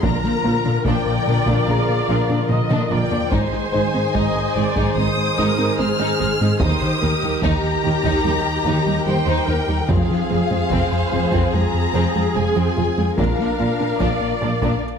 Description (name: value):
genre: cinematic, hybrid orchestral and electronic film score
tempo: 73 BPM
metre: 4/4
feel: straight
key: unclear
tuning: A4 = 441 Hz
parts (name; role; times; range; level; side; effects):
- warm symphonic violin section; melody; 0.0-14.8 s; F5 to F6; -26 LUFS; left 4 dB; none
- dark symphonic violin section; second line; 0.0-14.8 s; C4 to C5; -27 LUFS; left 4 dB; none
- warm symphonic viola section; accompaniment; 0.0-14.8 s; G4 to Eb5; -26 LUFS; right 1 dB; none
- brassy analog pad; sustained chords; 0.0-14.8 s; D3 to C5; -25 LUFS; equal; chorus
- wide unison pluck; arpeggios; 0.0-14.8 s; Eb3 to Bb4; -29 LUFS; right 4 dB; none
- smooth gliding synth bass; riff; 0.0-14.7 s; Eb2 to Bb3; -24 LUFS; left 2 dB; none
- rich symphonic cello section; bass; 0.0-14.7 s; Eb2 to Bb2; -26 LUFS; right 4 dB; none
- warm chamber double bass section; bass; 0.0-14.5 s; F1 to Eb2; -27 LUFS; right 4 dB; none
- taiko ensemble; drums; 0.0-14.8 s; none; -26 LUFS; equal; none
- dark grand piano; texture; 0.0-9.9 s; F4 to Eb6; -32 LUFS; equal; none
room: moderate scoring stage reverb, RT60 1.5 s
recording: none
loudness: -17 LUFS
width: side -6 dB against mid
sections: 0.0-15.0 A section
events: drum fill 2.5-3.3; break 14.8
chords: 0.0 Bb; 3.3 Ab; 6.6 Eb; 9.9 Fm; 13.2 Bb